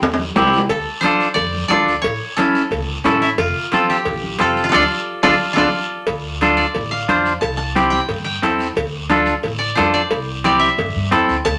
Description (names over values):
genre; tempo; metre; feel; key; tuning
latin, cumbia; 178 BPM; 4/4; straight; D minor; A4 = 440 Hz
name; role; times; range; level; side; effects
koto; melody; 0.0-11.6 s; E4 to A5; -24 LUFS; equal; none
upright bass; bass; 0.0-11.6 s; F1 to G2; -29 LUFS; equal; none
congas; percussion; 0.0-11.6 s; none; -31 LUFS; equal; none
cowbell and timbales; percussion; 0.0-11.6 s; none; -24 LUFS; equal; none
guiro; percussion; 0.0-11.6 s; none; -34 LUFS; equal; none
clean electric guitar; accompaniment; 0.4-11.4 s; C4 to C5; -18 LUFS; equal; none
room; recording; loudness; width
wet studio reverb, RT60 0.5 s; none; -17 LUFS; mono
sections
0.0-6.1 A section; 6.1-11.6 B section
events
drum fill 0.0-0.7, 5.1-6.1; band accent 4.7-6.1; koto solo 6.1-11.6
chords
0.0 C; 0.7 Dm; 2.0 A; 3.4 F; 4.7 Dm; 7.4 C; 8.8 Dm; 10.1 C